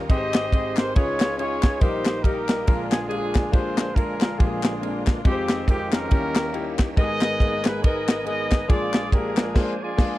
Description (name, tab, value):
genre	uptempo gospel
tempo	140 BPM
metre	4/4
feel	swing 58% on 8ths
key	unclear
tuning	A4 = 440 Hz
part	clear grand piano	accompaniment	0.0-10.2 s	F1 to Eb5	-29 LUFS	left 3 dB	none
part	bright tonewheel organ	sustained chords	0.0-10.2 s	Db3 to Fb5	-34 LUFS	right 5 dB	chorus vibrato, stopped rotary speaker
part	mellow horn section	melody	0.1-10.2 s	C4 to Eb5	-26 LUFS	equal	none
part	tight funk drum kit	drums	0.1-10.1 s	crash cymbal, kick drum, ride cymbal, snare drum	-20 LUFS	equal	none
part	group handclap	percussion	0.3-9.5 s	none	-33 LUFS	left 12 dB	none
room	little or no reverb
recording	dry, close 1970s-style studio recording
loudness	-20 LUFS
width	side -16 dB against mid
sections	0.0-10.2 A section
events	band accent 9.6-10.2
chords	0.1 Abmaj7; 1.0 Db9; 1.8 Eb/Bb; 2.7 Bb7; 5.3 Fm7; 6.1 Eb7b9; 7.0 Abmadd9; 8.7 Bb7